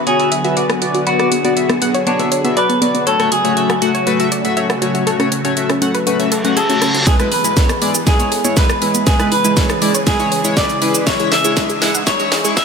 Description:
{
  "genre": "progressive house",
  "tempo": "120 BPM",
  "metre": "4/4",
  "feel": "straight",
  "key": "unclear",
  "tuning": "A4 = 440 Hz",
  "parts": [
    { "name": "clean electric guitar", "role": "melody", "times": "0.0-12.6 s", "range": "D4 to E5", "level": "-19 LUFS", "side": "equal", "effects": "sidechain pumping, digital delay" },
    { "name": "supersaw pad", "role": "sustained chords", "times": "0.0-12.6 s", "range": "C#3 to G#4", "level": "-23 LUFS", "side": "right 1 dB", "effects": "phaser, sidechain pumping" },
    { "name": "wide unison pluck", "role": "arpeggios", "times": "0.0-12.5 s", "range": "B3 to F#5", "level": "-22 LUFS", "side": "equal", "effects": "sidechain pumping, ping-pong delay" },
    { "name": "chorused polysynth", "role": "stabs", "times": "0.1-12.6 s", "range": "G#3 to F#5", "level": "-18 LUFS", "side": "left 2 dB", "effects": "sidechain pumping, ping-pong delay" },
    { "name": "house drum kit", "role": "drums", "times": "0.1-12.6 s", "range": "hi-hat, rim click, shaker, snare drum", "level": "-20 LUFS", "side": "equal", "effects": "high-pass filter on hats, low-pass filter on hats, studio reverb, high-pass filter on snare, low-pass filter on snare, high-pass filter on perc, low-pass filter on perc" },
    { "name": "reverse cymbal and riser", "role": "sound effects", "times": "6.3-12.6 s", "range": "none", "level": "-25 LUFS", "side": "equal", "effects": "none" },
    { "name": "electronic kick drum", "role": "drums", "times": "7.1-12.6 s", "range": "none", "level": "-16 LUFS", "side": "equal", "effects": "studio reverb" }
  ],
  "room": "light reverb, digital ambience",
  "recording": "high-pass filter",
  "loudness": "-13 LUFS",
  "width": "side -6 dB against mid",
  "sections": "0.0-7.1 A section; 7.1-12.6 B section",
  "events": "filter sweep on analog polysynth 0.0-7.1; reverse cymbal 6.3-7.1; build-up 7.1-12.6; drum fill 7.1-12.6; filter sweep 7.1-12.6",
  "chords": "0.0 Bm; 3.1 F#m; 7.1 E; 11.1 C#m",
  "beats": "0.07 0.57 | 1.07 1.57 2.07 2.57 | 3.07 3.57 4.07 4.57 | 5.07 5.57 6.07 6.57 | 7.07 7.57 8.07 8.57 | 9.07 9.57 10.07 10.57 | 11.07 11.57 12.07 12.57"
}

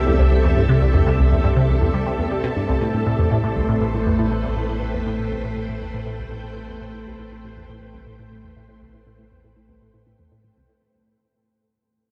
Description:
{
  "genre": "ambient, sequencer-driven space music",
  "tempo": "120 BPM",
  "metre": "4/4",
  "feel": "straight",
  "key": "unclear",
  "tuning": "A4 = 441 Hz",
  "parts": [
    { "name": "string machine, full ensemble", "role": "sustained chords", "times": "0.0-10.7 s", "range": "A3 to G5", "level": "-27 LUFS", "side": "equal", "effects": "ensemble chorus" },
    { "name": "round analog bass", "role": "bass", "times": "0.0-10.7 s", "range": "A1 to C2", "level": "-27 LUFS", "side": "equal", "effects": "none" },
    { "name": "resonant blip pluck", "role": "riff", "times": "0.1-10.6 s", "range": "C2 to G3", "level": "-23 LUFS", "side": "equal", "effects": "phaser, lush chorus, tape echo" }
  ],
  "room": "wet huge ambient reverb, RT60 7.7 s",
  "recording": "dark, warm production",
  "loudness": "-20 LUFS",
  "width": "mono",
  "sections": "0.0-10.7 A section",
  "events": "fade-out 0.0-10.7; filter sweep on synth arpeggio sound 0.0-10.7",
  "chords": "0.0 C6; 2.7 Am7",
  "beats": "0.19 | 0.69 1.19 1.69 2.19 | 2.69 3.19 3.69 4.19 | 4.69 5.19 5.69 6.19 | 6.69 7.19 7.69 8.19 | 8.69 9.19 9.69 10.19"
}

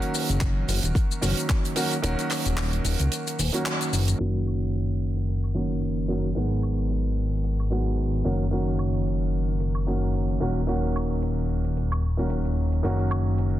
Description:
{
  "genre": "nu-disco, nu disco",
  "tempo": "111 BPM",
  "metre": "4/4",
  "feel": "swing 56% on 16ths",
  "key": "F# major",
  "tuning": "A4 = 441 Hz",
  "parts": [
    { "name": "warm concert grand piano", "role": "accompaniment", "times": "0.0-13.6 s", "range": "D#3 to F#4", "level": "-27 LUFS", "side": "right 1 dB", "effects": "slapback echo" },
    { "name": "damped 70s drum kit", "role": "drums", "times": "0.0-13.5 s", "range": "handclaps, hi-hat, shaker, woodblock", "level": "-31 LUFS", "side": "right 1 dB", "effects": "none" },
    { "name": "chorused synth bass", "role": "bass", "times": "0.3-13.6 s", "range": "D#1 to C#2", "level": "-25 LUFS", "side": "equal", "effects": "sidechain pumping" },
    { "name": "electronic kick drum", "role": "drums", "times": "0.4-1.6 s", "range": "none", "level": "-24 LUFS", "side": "equal", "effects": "none" }
  ],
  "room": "light reverb",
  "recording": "dense, heavily limited modern master, low-pass filter",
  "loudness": "-23 LUFS",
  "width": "side -13 dB against mid",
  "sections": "0.0-4.2 A section; 4.2-13.6 B section",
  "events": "filter sweep on grand piano 0.0-4.2; kick drops out 2.0-4.2; band accent 3.7; filter sweep 4.2-13.6",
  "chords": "0.0 D#m7; 4.2 F#6; 6.4 G#m7; 8.2 F#6; 10.4 D#m7; 12.8 F#6",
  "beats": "0.41 0.95 1.49 | 2.03 2.57 3.11 3.65 | 4.20 4.74 5.28 5.82 | 6.36 6.90 7.44 7.98 | 8.52 9.06 9.60 10.14 | 10.68 11.22 11.76 12.30 | 12.84 13.38"
}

